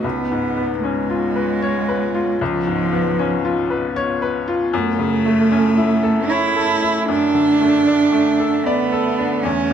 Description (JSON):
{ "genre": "neoclassical piano and strings", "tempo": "77 BPM", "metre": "3/4", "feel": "rubato", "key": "unclear", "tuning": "A4 = 440 Hz", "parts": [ { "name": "dark cello", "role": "second line", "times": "0.0-9.7 s", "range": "E#3 to E4", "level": "-18 LUFS", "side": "right 4 dB", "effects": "none" }, { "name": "bright upright piano", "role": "accompaniment", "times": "0.0-9.7 s", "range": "C#2 to D5", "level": "-20 LUFS", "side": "left 4 dB", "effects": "none" }, { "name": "deep dark ambient pad", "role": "sustained chords", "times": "0.0-9.7 s", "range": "D3 to E5", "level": "-28 LUFS", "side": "left 1 dB", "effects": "chorus, built-in reverb" } ], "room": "moderate large studio reverb, RT60 1.5 s", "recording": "none", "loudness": "-16 LUFS", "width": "side -8 dB against mid", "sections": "0.0-9.7 A section", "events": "none", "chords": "0.0 C#7; 4.7 F#m7; 7.1 D", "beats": "| 0.04 0.83 1.62 | 2.40 3.19 3.96 | 4.73 5.50 6.31 | 7.09 7.88 8.67 | 9.45" }